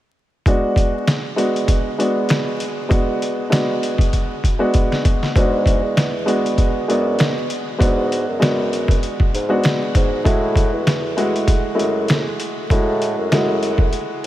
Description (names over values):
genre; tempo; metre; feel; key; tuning
hip hop, boom-bap hip-hop; 98 BPM; 4/4; swing 54% on 16ths; unclear; A4 = 440 Hz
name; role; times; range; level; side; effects
dark upright piano; accompaniment; 0.5-14.3 s; G#3 to F#4; -19 LUFS; equal; cassette tape, high-pass filter, low-pass filter
trip hop sampler-style drum kit; drums; 0.5-14.3 s; hi-hat, kick drum, snare drum; -19 LUFS; equal; none
mellow bassoon; bass; 5.4-14.3 s; E2 to A2; -24 LUFS; equal; none
room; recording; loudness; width
moderate huge ambient reverb, RT60 7.1 s; dreamy mix soaked in reverb, vinyl crackle; -16 LUFS; side -14 dB against mid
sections
0.5-5.4 A section; 5.4-14.3 B section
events
drum fill 4.1-5.4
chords
0.5 G#m7b5; 10.3 F#m9